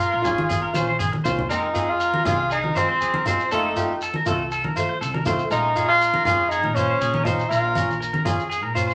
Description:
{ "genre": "highlife guitar band", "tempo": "120 BPM", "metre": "4/4", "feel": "straight", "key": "F minor", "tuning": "A4 = 437 Hz", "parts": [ { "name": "clear tenor saxophone", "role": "melody", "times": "0.0-8.0 s", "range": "C4 to F4", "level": "-24 LUFS", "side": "equal", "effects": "none" }, { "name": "clean electric guitar", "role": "arpeggios", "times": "0.0-8.9 s", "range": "G4 to C5", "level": "-28 LUFS", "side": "equal", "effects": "vibrato effect" }, { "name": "upright bass", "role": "bass", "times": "0.0-8.9 s", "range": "Ab1 to F3", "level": "-33 LUFS", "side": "equal", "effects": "none" }, { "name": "picked swing-style acoustic guitar", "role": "accompaniment", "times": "0.2-8.9 s", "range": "Eb3 to F4", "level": "-30 LUFS", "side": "equal", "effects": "none" }, { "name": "shekere", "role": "percussion", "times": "0.2-8.9 s", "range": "none", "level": "-33 LUFS", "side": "equal", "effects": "none" }, { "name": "congas", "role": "percussion", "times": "0.3-8.4 s", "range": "none", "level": "-31 LUFS", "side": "equal", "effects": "none" } ], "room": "wet studio reverb, RT60 0.7 s", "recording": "vinyl crackle", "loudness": "-22 LUFS", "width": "mono", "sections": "0.0-1.5 A section; 1.5-8.9 B section", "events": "drum fill 1.0-1.5", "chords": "0.0 Bbm7; 1.5 Fm7; 3.5 F7; 5.5 Bbm7" }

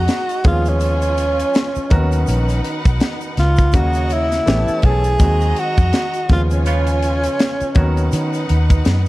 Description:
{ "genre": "lush 1970s-style soul", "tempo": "82 BPM", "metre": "4/4", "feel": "swing 58% on 16ths", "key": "unclear", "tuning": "A4 = 441 Hz", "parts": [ { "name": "breathy tenor saxophone", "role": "melody", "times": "0.0-8.7 s", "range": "Db4 to Ab4", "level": "-21 LUFS", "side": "equal", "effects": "none" }, { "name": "clear studio string section", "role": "second line", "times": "0.0-9.1 s", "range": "D#4 to Bb5", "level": "-27 LUFS", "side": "right 2 dB", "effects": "none" }, { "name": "warm grand piano", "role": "accompaniment", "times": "0.0-9.1 s", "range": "Db3 to A#4", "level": "-25 LUFS", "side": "equal", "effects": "none" }, { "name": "vintage muted fingered electric bass", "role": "bass", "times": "0.0-9.0 s", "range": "A1 to D#3", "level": "-17 LUFS", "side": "equal", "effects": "none" }, { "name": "tight funk drum kit", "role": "drums", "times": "0.1-9.1 s", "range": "hi-hat, kick drum, snare drum", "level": "-17 LUFS", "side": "equal", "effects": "none" }, { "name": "tube shaker", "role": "percussion", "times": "0.1-9.1 s", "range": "none", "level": "-42 LUFS", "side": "right 15 dB", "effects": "none" }, { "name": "warm horn section", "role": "stabs", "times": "6.7-6.9 s", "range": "F3 to F4", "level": "-27 LUFS", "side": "right 3 dB", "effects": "none" } ], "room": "small room ambience", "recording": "dark, warm production", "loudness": "-14 LUFS", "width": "side -18 dB against mid", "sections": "0.0-9.1 A section", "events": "band accent 6.7-9.1", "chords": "0.5 Db7/Eb; 1.9 Bmaj7; 3.7 Ebm7; 4.5 A9; 5.2 Ab7/Eb; 6.3 Db7/Eb; 7.8 Bmaj7/D#" }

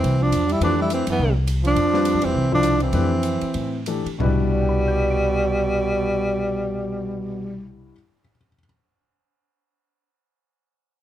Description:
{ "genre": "modal jazz", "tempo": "178-209 BPM", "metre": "4/4", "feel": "swing 59% on 8ths", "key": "C major", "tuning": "A4 = 440 Hz", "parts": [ { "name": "breathy tenor saxophone", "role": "melody", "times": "0.0-7.7 s", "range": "G3 to E4", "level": "-22 LUFS", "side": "equal", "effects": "none" }, { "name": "growling trombone", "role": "second line", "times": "0.0-7.6 s", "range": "B2 to G3", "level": "-27 LUFS", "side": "right 4 dB", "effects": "none" }, { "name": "upright bass", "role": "bass", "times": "0.0-7.9 s", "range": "C2 to A2", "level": "-24 LUFS", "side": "equal", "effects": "none" }, { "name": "open jazz drum kit", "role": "drums", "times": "0.0-4.3 s", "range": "hi-hat, kick drum, ride cymbal, snare drum, toms", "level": "-33 LUFS", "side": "equal", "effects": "none" }, { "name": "clear grand piano", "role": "accompaniment", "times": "0.6-8.6 s", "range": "B2 to D7", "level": "-28 LUFS", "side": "left 5 dB", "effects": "none" } ], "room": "moderate club reverb, RT60 0.8 s", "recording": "dark, warm production", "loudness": "-19 LUFS", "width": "side -11 dB against mid", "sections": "0.0-4.2 A section; 4.2-6.9 B section", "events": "slowing down 1.8-4.2", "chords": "0.0 Fmaj9; 4.2 Cmaj9" }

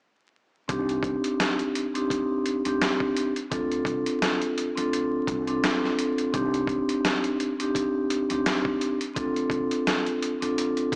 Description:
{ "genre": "hip hop, boom-bap hip-hop", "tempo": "85 BPM", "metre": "4/4", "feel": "swing 56% on 16ths", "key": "C dorian", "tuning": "A4 = 440 Hz", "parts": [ { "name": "vibraphone with soft mallets", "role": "accompaniment", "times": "0.7-11.0 s", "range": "C4 to A4", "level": "-28 LUFS", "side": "equal", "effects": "cassette tape, high-pass filter, low-pass filter" }, { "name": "upright bass", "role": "bass", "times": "0.7-11.0 s", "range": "C2 to D2", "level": "-42 LUFS", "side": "equal", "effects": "none" }, { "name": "boom bap sampler-style drum kit", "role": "drums", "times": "0.7-11.0 s", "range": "hi-hat, kick drum, snare drum", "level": "-32 LUFS", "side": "equal", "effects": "none" } ], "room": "light reverb, small room ambience", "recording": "vinyl crackle, small speaker sound", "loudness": "-26 LUFS", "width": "mono", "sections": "0.7-11.0 A section", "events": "none", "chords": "0.7 Cmadd9; 3.5 Dm7; 6.3 Cmadd9; 9.2 Dm7" }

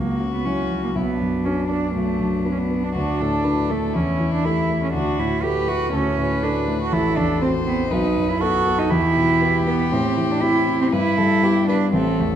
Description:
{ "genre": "quick classical-period movement for piano trio", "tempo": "120 BPM", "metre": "4/4", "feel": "straight", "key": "E minor from 6.9 s", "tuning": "A4 = 440 Hz", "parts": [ { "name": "warm violin", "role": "melody", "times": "0.0-12.4 s", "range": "D4 to C5", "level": "-27 LUFS", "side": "left 7 dB", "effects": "none" }, { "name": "rich cello", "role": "second line", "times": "0.0-12.4 s", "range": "A3 to G4", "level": "-22 LUFS", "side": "right 4 dB", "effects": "none" }, { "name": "warm grand piano", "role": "accompaniment", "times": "0.0-12.4 s", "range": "A1 to A4", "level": "-22 LUFS", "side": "left 1 dB", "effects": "none" } ], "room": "wet concert hall reverb, RT60 1.8 s", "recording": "dark, warm production", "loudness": "-18 LUFS", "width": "side -9 dB against mid", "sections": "0.0-12.4 A section", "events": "none", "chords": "0.0 F#5/C#; 1.0 Bm; 3.0 D; 3.9 A5/E; 4.9 D; 6.9 F#m7b5/A; 7.9 B5; 8.9 Em; 9.9 Am7; 10.9 Em/G" }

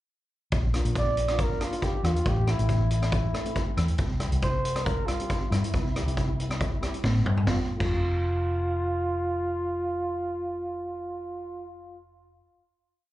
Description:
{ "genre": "calypso", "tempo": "138 BPM", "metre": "4/4", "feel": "straight", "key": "F major", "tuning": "A4 = 440 Hz", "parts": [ { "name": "hollow-body short-scale fingered electric bass", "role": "bass", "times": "0.5-12.4 s", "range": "F1 to A2", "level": "-27 LUFS", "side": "equal", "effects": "none" }, { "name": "street-band drum kit", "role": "drums", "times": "0.5-7.9 s", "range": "crash cymbal, hi-hat, kick drum, rim click, snare drum, toms", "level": "-29 LUFS", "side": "equal", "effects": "none" }, { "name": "steel pan", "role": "accompaniment", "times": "0.7-12.4 s", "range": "G3 to G4", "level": "-37 LUFS", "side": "left 2 dB", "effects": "plate reverb, slapback echo" }, { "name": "mellow flugelhorn", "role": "melody", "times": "1.0-11.7 s", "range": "E4 to D5", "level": "-30 LUFS", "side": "right 1 dB", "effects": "plate reverb, slapback echo, ping-pong delay" } ], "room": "light reverb", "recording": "live gig heard through the venue's PA, club reverb, nothing above 10.4 kHz", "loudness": "-25 LUFS", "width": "side -15 dB against mid", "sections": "0.5-7.5 verse; 7.5-10.9 final chord", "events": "drum fill 7.0-7.5", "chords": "0.5 Bb; 2.3 Am; 4.0 C; 7.5 F" }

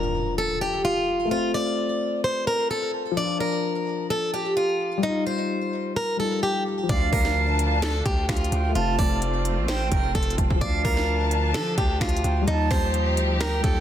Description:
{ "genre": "hip hop, trap", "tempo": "129 BPM", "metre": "4/4", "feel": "half-time", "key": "D phrygian", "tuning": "A4 = 439 Hz", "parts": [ { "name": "picked plugged-in swing-style acoustic guitar", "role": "melody", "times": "0.0-13.8 s", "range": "Eb4 to D5", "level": "-26 LUFS", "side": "equal", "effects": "digital delay" }, { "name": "dark concert grand piano", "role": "accompaniment", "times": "0.0-13.8 s", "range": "F3 to F4", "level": "-30 LUFS", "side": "left 5 dB", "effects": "none" }, { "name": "impact", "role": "sound effects", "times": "0.0-1.3 s", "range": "none", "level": "-33 LUFS", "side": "equal", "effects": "none" }, { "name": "silver concert flute", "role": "second line", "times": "6.9-13.8 s", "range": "F5 to A5", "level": "-30 LUFS", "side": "right 8 dB", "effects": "digital delay" }, { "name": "warm symphonic string section", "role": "sustained chords", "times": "6.9-13.8 s", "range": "D3 to A5", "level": "-32 LUFS", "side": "left 2 dB", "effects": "none" }, { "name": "distorted 808-style bass", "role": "bass", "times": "6.9-13.8 s", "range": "F1 to F3", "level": "-25 LUFS", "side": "equal", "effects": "distortion" }, { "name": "trap drum kit", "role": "drums", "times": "6.9-13.8 s", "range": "finger snaps, hi-hat, kick drum, snare drum", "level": "-25 LUFS", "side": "equal", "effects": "soft clipping on snare" } ], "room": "studio reverb", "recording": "dense, heavily limited modern master", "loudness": "-21 LUFS", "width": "side -10 dB against mid", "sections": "0.0-13.8 A section", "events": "impact 0.0-1.3", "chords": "0.0 Dm; 1.3 F; 3.2 Dm; 5.0 Ebadd9; 6.9 Dm; 8.8 F; 10.6 Dm; 12.5 Ebadd9" }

